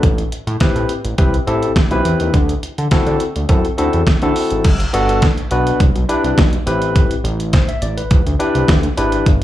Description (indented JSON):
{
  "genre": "early-eighties boogie funk",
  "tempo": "104 BPM",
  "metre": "4/4",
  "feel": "straight",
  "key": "G major",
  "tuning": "A4 = 440 Hz",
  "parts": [
    { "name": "barky tine electric piano", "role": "accompaniment", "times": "0.0-9.3 s", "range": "B3 to E5", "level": "-18 LUFS", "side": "left 2 dB", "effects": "slapback echo" },
    { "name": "fat analog bass", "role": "bass", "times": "0.0-9.4 s", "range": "G1 to D3", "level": "-18 LUFS", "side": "equal", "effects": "none" },
    { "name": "detuned 8-bit digital drum machine", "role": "drums", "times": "0.0-9.4 s", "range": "crash cymbal, hi-hat, kick drum, snare drum", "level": "-15 LUFS", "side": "equal", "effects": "none" }
  ],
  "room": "little or no reverb",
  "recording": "live gig heard through the venue's PA, club reverb",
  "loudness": "-13 LUFS",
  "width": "side -13 dB against mid",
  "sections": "0.0-4.6 A section; 4.6-9.4 B section",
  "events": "none",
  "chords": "0.0 Am9; 2.3 D7; 4.6 Gmaj7; 5.8 Cmaj7; 6.7 Am9; 8.1 Cmaj7"
}